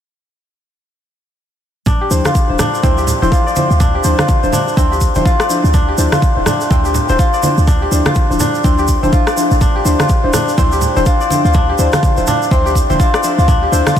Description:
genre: afro house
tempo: 124 BPM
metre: 4/4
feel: swing 60% on 16ths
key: D minor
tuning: A4 = 441 Hz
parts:
  - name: kora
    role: arpeggios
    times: 1.9-14.0 s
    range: C4 to D5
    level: -17 LUFS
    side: left 2 dB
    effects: sidechain pumping, low-pass filter, ping-pong delay
  - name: electronic kick drum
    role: drums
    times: 1.9-14.0 s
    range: none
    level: -14 LUFS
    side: equal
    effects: studio reverb
  - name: congas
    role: percussion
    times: 1.9-13.9 s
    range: none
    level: -22 LUFS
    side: right 3 dB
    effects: none
  - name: tube shaker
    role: percussion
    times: 1.9-14.0 s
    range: none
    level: -26 LUFS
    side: right 2 dB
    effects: none
  - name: deep mellow chord stab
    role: stabs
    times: 2.1-13.9 s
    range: F3 to C5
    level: -19 LUFS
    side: left 2 dB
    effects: lush chorus, vintage 12-bit sampler grit, sidechain pumping, ping-pong delay
  - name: warm 808-style bass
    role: bass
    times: 2.1-13.8 s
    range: D1 to D2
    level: -16 LUFS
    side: equal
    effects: sidechain pumping
  - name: electronic rim click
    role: drums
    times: 2.3-13.9 s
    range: none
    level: -24 LUFS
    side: left 2 dB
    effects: studio reverb
room: moderate huge ambient reverb, RT60 8.1 s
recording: dreamy mix soaked in reverb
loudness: -11 LUFS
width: side -9 dB against mid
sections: 1.9-14.0 A section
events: none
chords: 1.9 Dm9

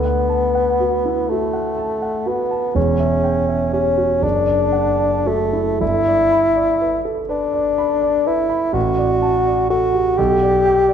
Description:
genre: classical, romantic duo for bassoon and grand piano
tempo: 37-43 BPM (dotted quarters)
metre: 6/8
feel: rubato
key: D major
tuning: A4 = 440 Hz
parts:
  - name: mellow bassoon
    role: melody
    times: 0.0-10.9 s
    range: A3 to G4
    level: -16 LUFS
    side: left 1 dB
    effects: none
  - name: warm concert grand piano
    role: accompaniment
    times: 0.0-10.9 s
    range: E1 to B5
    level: -21 LUFS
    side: right 3 dB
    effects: none
room: moderate scoring stage reverb, RT60 1.6 s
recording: dark, warm production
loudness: -15 LUFS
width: side -8 dB against mid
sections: 0.0-10.9 A section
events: none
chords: 0.0 D; 2.8 Em69; 4.2 D/F#; 5.8 G; 8.8 D/A; 10.2 G/B

